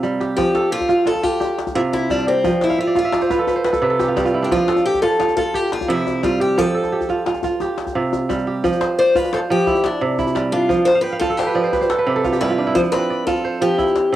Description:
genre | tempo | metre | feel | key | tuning
west african traditional, West African string and xylophone music | 116 BPM (dotted quarters) | 12/8 | straight | F lydian | A4 = 440 Hz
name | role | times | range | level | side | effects
kora | arpeggios | 0.0-14.2 s | C3 to A5 | -19 LUFS | right 3 dB | cassette tape
djembe | percussion | 0.0-14.0 s | none | -26 LUFS | left 7 dB | none
picked old ladder-braced acoustic guitar | melody | 0.4-14.1 s | C4 to C5 | -19 LUFS | left 2 dB | cassette tape
room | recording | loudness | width
moderate studio reverb, RT60 0.6 s | home recording on cassette | -16 LUFS | side -13 dB against mid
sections
0.0-8.6 A section; 8.6-14.2 B section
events
drum fill 0.0-0.4; kora fill 2.7-4.5, 11.0-12.8; steel-string acoustic guitar solo 8.6-14.2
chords
0.4 F; 1.4 C5; 2.4 Fmaj7sus2; 3.5 C5; 4.5 F; 5.5 C; 6.6 F; 7.6 C5; 8.6 F5; 9.7 C; 10.7 F69; 11.7 C5; 12.8 F

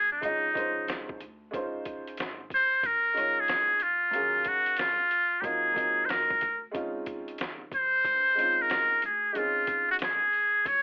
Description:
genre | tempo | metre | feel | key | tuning
hip hop, jazz-hop | 92 BPM | 4/4 | swing 64% on 16ths | Db major | A4 = 440 Hz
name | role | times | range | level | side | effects
trumpet with metal mute | melody | 0.0-10.8 s | Eb4 to Db5 | -24 LUFS | equal | cassette tape
upright bass | bass | 0.0-10.8 s | Ab1 to Eb2 | -53 LUFS | equal | none
warm baby grand piano | accompaniment | 0.2-10.2 s | Gb3 to F5 | -35 LUFS | right 1 dB | cassette tape
trip hop sampler-style drum kit | drums | 0.2-10.8 s | hi-hat, kick drum, snare drum | -37 LUFS | equal | cassette tape
room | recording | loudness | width
light reverb | home recording on cassette, telephone sound | -25 LUFS | side -31 dB against mid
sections
0.0-1.5 A section; 1.5-10.8 B section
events
muted trumpet solo 0.0-1.5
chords
0.0 Dbmaj9; 4.1 Ebm11; 5.4 Ab13; 6.7 Dbmaj9

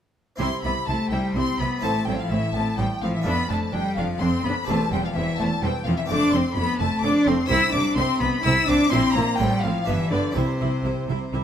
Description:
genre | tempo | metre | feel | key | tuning
classical, baroque-style concerto movement with solo episodes | 126 BPM | 3/4 | straight | C major | A4 = 439 Hz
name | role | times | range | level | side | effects
rich chamber violin section | melody | 0.4-11.3 s | C5 to E6 | -31 LUFS | left 4 dB | none
warm cello | melody | 0.4-11.3 s | C3 to E4 | -24 LUFS | left 1 dB | none
rich chamber violin section | second line | 0.4-11.3 s | C5 to E6 | -29 LUFS | left 3 dB | none
harpsichord | accompaniment | 0.4-11.4 s | E2 to C5 | -32 LUFS | right 1 dB | none
rich chamber viola section | accompaniment | 0.4-11.4 s | A3 to E4 | -33 LUFS | right 2 dB | none
dark chamber double bass section | bass | 0.4-11.4 s | E1 to C2 | -30 LUFS | right 3 dB | none
warm chamber cello section | bass | 0.4-11.4 s | E2 to C3 | -29 LUFS | right 3 dB | none
room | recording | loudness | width
moderate scoring stage reverb, RT60 1.6 s | close, detailed microphones | -20 LUFS | side -9 dB against mid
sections
0.4-11.4 A section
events
none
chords
0.4 C; 1.8 Am; 3.3 Dm/F; 4.7 C/E; 6.1 F; 7.5 C5; 8.9 C7/Bb; 9.4 F/A; 9.9 G; 10.4 C

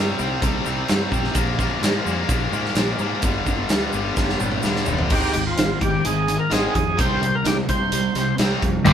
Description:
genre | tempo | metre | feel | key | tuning
classic rock | 128 BPM | 4/4 | straight | C minor | A4 = 440 Hz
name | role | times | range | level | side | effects
distorted electric guitar | riff | 0.0-8.9 s | G2 to C4 | -25 LUFS | left 7 dB | overdrive
overdriven electric guitar | riff | 0.0-8.9 s | G2 to Eb4 | -28 LUFS | right 6 dB | none
fuzz fingered electric bass | bass | 0.0-8.9 s | F1 to Ab2 | -27 LUFS | equal | overdrive
tube shaker | percussion | 0.2-5.0, 8.9 s | none | -39 LUFS | right 6 dB | none
big rock drum kit | drums | 0.4-8.9 s | crash cymbal, hi-hat, kick drum, snare drum, toms | -23 LUFS | equal | none
overdriven tonewheel organ | melody | 5.1-8.9 s | F4 to C5 | -24 LUFS | right 1 dB | slow rotary speaker
crunchy overdriven guitar | riff | 8.8-8.9 s | G2 to G3 | -12 LUFS | equal | none
room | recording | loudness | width
moderate stone room reverb, RT60 1.2 s | band playing live in one room | -19 LUFS | side -8 dB against mid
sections
0.0-5.1 A section; 5.1-8.9 B section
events
drum fill 4.2-5.1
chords
0.0 Cm; 1.4 Bb; 3.2 G; 5.1 Ab5; 7.0 C5

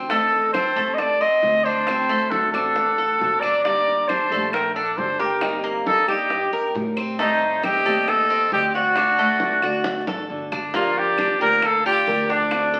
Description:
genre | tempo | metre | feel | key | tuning
latin, Cuban son and guajira | 135 BPM | 4/4 | straight | unclear | A4 = 440 Hz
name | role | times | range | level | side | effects
flamenco guitar | accompaniment | 0.0-12.8 s | C3 to A4 | -34 LUFS | equal | none
Cuban tres | arpeggios | 0.0-12.8 s | A3 to Bb4 | -29 LUFS | equal | none
upright bass | bass | 0.0-12.8 s | G1 to A2 | -37 LUFS | equal | none
warm trumpet | melody | 0.1-12.8 s | D4 to Eb5 | -22 LUFS | equal | none
jazz flute | second line | 0.1-12.8 s | A4 to C6 | -33 LUFS | equal | none
bongos | percussion | 0.1-12.8 s | none | -35 LUFS | equal | none
claves | percussion | 0.5-12.7 s | none | -38 LUFS | equal | none
room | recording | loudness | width
wet large studio reverb, RT60 1.0 s | very old 78 rpm record, vinyl crackle | -21 LUFS | mono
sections
0.0-10.7 A section; 10.7-12.8 B section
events
drum fill 9.9-10.7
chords
0.1 Adim; 1.9 D7; 3.6 Gmadd9; 5.4 Cm7/G; 7.2 Am7b5; 9.0 D; 10.7 Gm7

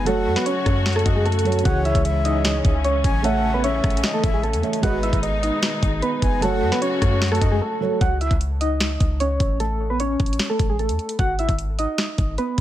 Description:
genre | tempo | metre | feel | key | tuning
hip hop, trap | 151 BPM | 4/4 | half-time | C# minor | A4 = 440 Hz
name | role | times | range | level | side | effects
soft electric-piano-like synth keys | melody | 0.0-12.6 s | G#3 to F#5 | -24 LUFS | equal | chorus, tremolo, ping-pong delay
breathy flute-like synth lead | second line | 0.0-7.6 s | B4 to G#5 | -28 LUFS | left 3 dB | chorus, ping-pong delay
felt-muted upright piano | accompaniment | 0.0-8.0 s | C#3 to E5 | -27 LUFS | right 5 dB | none
muted studio string section | sustained chords | 0.0-8.0 s | B2 to F#4 | -29 LUFS | left 2 dB | none
warm 808-style bass | bass | 0.0-12.6 s | F#1 to F#2 | -23 LUFS | equal | none
trap drum kit | drums | 0.1-12.6 s | hi-hat, kick drum, rim click, snare drum | -23 LUFS | equal | vintage 12-bit sampler grit
room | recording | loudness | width
little or no reverb | none | -18 LUFS | side -12 dB against mid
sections
0.0-8.0 A section; 8.0-12.6 B section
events
break 7.6-8.0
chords
0.1 F#m; 1.7 C#m; 3.2 A; 4.8 G#m; 6.4 F#m; 8.0 C#m; 9.6 A; 11.2 G#m

